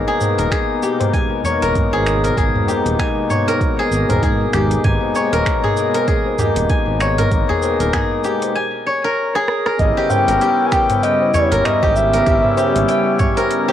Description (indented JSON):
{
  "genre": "organic downtempo",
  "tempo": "97 BPM",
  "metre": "4/4",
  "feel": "swing 57% on 16ths",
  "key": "G# harmonic minor",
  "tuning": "A4 = 440 Hz",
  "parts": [
    { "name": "hand-pumped harmonium", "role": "accompaniment", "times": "0.0-13.7 s", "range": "G#3 to G#4", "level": "-22 LUFS", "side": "left 7 dB", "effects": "sidechain pumping, tape echo, plate reverb" },
    { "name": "warm analog pad", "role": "sustained chords", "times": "0.0-13.7 s", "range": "B2 to C#5", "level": "-24 LUFS", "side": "right 1 dB", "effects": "chorus, tremolo, vintage 12-bit sampler grit, sidechain pumping, plate reverb" },
    { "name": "steel-string zither", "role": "arpeggios", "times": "0.0-13.7 s", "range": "G4 to G#5", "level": "-20 LUFS", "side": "equal", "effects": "tape echo, plate reverb" },
    { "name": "smooth synth bass", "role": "bass", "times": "0.0-12.8 s", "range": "D#1 to G#2", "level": "-21 LUFS", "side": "right 1 dB", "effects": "none" },
    { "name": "tabla", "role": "percussion", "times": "0.1-13.7 s", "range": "none", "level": "-27 LUFS", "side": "left 5 dB", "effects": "none" },
    { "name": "afro-pop drum kit", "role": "drums", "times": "0.2-13.6 s", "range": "cabasa, finger snaps, hi-hat, rim click, toms", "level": "-24 LUFS", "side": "right 2 dB", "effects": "cassette tape" },
    { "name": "electronic kick drum", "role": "drums", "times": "0.5-13.3 s", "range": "none", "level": "-20 LUFS", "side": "right 1 dB", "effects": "cassette tape" },
    { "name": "breathy flute-like synth lead", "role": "melody", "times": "9.8-13.2 s", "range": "C#5 to G#5", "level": "-17 LUFS", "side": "equal", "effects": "chorus, cassette tape, tape echo, plate reverb" }
  ],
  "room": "moderate small room reverb, RT60 0.5 s",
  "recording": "home recording on cassette",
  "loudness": "-14 LUFS",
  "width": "side -10 dB against mid",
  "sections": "0.0-9.8 A section; 9.8-13.7 B section",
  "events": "drum fill 9.3-9.8",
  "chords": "0.0 G#madd9; 9.8 D#7b9b13"
}